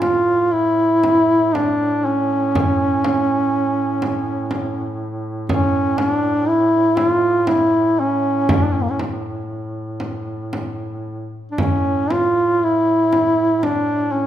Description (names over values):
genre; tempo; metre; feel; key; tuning
caucasian folk, Caucasian lament; 60 BPM; 3/4; rubato; A major; A4 = 439 Hz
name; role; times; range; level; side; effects
mellow duduk; melody; 0.0-14.3 s; Bb3 to F4; -16 LUFS; equal; none
warm duduk; drone; 0.0-14.3 s; A2; -27 LUFS; equal; none
frame drum; percussion; 0.0-13.9 s; none; -24 LUFS; equal; none
room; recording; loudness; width
moderate scoring stage reverb, RT60 1.8 s; minimal, uncompressed stereo recording; -16 LUFS; side -11 dB against mid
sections
0.0-14.3 A section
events
none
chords
none